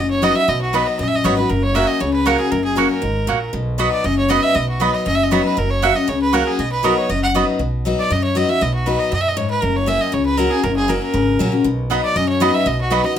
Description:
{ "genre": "bluegrass", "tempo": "236 BPM", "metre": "4/4", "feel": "straight", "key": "B major", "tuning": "A4 = 440 Hz", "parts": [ { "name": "clear fiddle", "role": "melody", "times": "0.0-13.2 s", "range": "F#4 to F#5", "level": "-20 LUFS", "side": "right 2 dB", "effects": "none" }, { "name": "picked steel-string acoustic guitar", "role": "accompaniment", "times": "0.0-13.2 s", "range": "F#2 to F#4", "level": "-19 LUFS", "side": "left 4 dB", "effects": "none" }, { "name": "upright bass", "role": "bass", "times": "0.0-13.0 s", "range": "F#1 to F#2", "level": "-23 LUFS", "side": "right 1 dB", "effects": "none" }, { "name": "mandolin", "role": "stabs", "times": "0.2-7.4, 11.9-13.0 s", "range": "A#3 to B5", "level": "-20 LUFS", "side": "right 7 dB", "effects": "none" } ], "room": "wet studio reverb, RT60 0.5 s", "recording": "none", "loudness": "-15 LUFS", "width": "side -9 dB against mid", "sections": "0.0-7.6 A section; 7.6-13.2 A section", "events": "none", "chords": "0.0 B; 1.5 F#; 3.5 B; 5.6 F#; 6.6 B; 9.6 F#; 11.7 B", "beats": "0.23 | 0.48 0.74 0.99 1.25 | 1.50 1.76 2.01 2.27 | 2.52 2.77 3.03 3.28 | 3.54 3.79 4.05 4.30 | 4.56 4.81 5.07 5.32 | 5.57 5.83 6.08 6.34 | 6.59 6.84 7.10 7.35 | 7.61 7.86 8.11 8.37 | 8.62 8.87 9.12 9.38 | 9.63 9.88 10.14 10.39 | 10.64 10.90 11.15 11.40 | 11.65 11.91 12.16 12.41 | 12.67 12.92 13.17" }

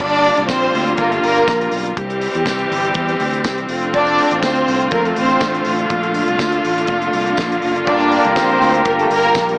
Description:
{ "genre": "disco", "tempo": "122 BPM", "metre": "4/4", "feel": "straight", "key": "G dorian", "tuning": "A4 = 441 Hz", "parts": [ { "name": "warm studio violin section", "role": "second line", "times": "0.0-9.6 s", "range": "A3 to D5", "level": "-15 LUFS", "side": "equal", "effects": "none" }, { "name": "bright studio string section", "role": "sustained chords", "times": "0.0-9.6 s", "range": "D3 to G4", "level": "-18 LUFS", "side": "equal", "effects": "none" }, { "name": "fingered electric bass", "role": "bass", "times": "0.0-9.5 s", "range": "F1 to F2", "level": "-26 LUFS", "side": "equal", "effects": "none" }, { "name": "damped 70s drum kit", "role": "drums", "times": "0.0-9.6 s", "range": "crash cymbal, hi-hat, kick drum, snare drum", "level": "-26 LUFS", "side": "equal", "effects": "none" }, { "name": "tambourine", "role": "percussion", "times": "0.5-9.5 s", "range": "none", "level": "-32 LUFS", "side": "right 1 dB", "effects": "none" }, { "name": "warm horn section", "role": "stabs", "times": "7.9-9.6 s", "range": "F4 to Bb4", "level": "-16 LUFS", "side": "equal", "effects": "none" } ], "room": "light reverb, small room ambience", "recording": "small speaker sound", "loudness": "-13 LUFS", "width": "side -27 dB against mid", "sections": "0.0-9.6 A section", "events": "none", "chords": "0.0 Gm7; 2.0 C; 3.7 F6; 5.9 Bbmaj7; 7.9 Gm7", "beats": "| 0.00 0.49 0.99 1.48 | 1.97 2.46 2.96 3.45 | 3.94 4.43 4.93 5.42 | 5.91 6.40 6.89 7.39 | 7.88 8.37 8.86 9.36" }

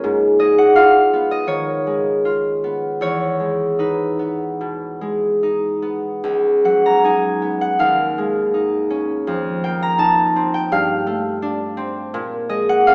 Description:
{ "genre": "classical, solo harp piece", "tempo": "71-86 BPM", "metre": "4/4", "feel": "rubato", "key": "unclear", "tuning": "A4 = 440 Hz", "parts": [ { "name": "concert harp", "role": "solo", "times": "0.0-12.9 s", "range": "Db2 to Bb5", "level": "-18 LUFS", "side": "equal", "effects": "none" } ], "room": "wet stone room reverb, RT60 1.4 s", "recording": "heard from further back in the room, small speaker sound", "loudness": "-18 LUFS", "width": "mono", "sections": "0.0-12.9 A section", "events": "none", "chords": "0.0 Abm6; 3.0 Emaj7; 6.2 Db9sus4; 7.8 Eb9sus4; 9.3 F9sus4; 10.7 G9sus4; 12.1 Bb7sus2", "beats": "| 0.04 0.76 1.49 2.24 | 3.01 3.79 4.60 5.41 | 6.23 7.03 7.79 8.53 | 9.26 9.99 10.71 11.42 | 12.13 12.86" }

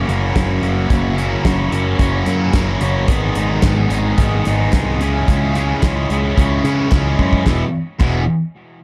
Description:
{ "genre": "indie rock", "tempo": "110 BPM", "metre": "4/4", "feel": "straight", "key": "E lydian", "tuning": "A4 = 440 Hz", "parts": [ { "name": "cranked stack guitar", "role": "riff", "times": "0.0-8.2 s", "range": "E2 to G#4", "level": "-24 LUFS", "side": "equal", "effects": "overdrive, phaser" }, { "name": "thick fuzz guitar", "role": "riff", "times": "0.0-8.2 s", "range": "E2 to G#4", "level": "-23 LUFS", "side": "equal", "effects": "distortion, subtle chorus, analog delay" }, { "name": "picked electric bass", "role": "bass", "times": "0.0-8.3 s", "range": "E1 to C#3", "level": "-22 LUFS", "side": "equal", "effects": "none" }, { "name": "loose indie drum kit", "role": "drums", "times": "0.1-8.1 s", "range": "crash cymbal, hi-hat, kick drum, snare drum", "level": "-20 LUFS", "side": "equal", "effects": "none" }, { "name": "group handclap", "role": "percussion", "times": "3.6-8.3 s", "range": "none", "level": "-38 LUFS", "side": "equal", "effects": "none" } ], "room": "little or no reverb", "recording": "dark, warm production", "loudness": "-17 LUFS", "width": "mono", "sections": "0.0-7.5 A section; 7.5-8.8 B section", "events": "drum fill 6.9-7.5", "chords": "0.0 F#7; 3.1 G#m; 5.0 C#m; 7.5 E", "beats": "0.36 | 0.91 1.46 2.00 2.55 | 3.10 3.64 4.19 4.74 | 5.28 5.83 6.37 6.92 | 7.46 8.01" }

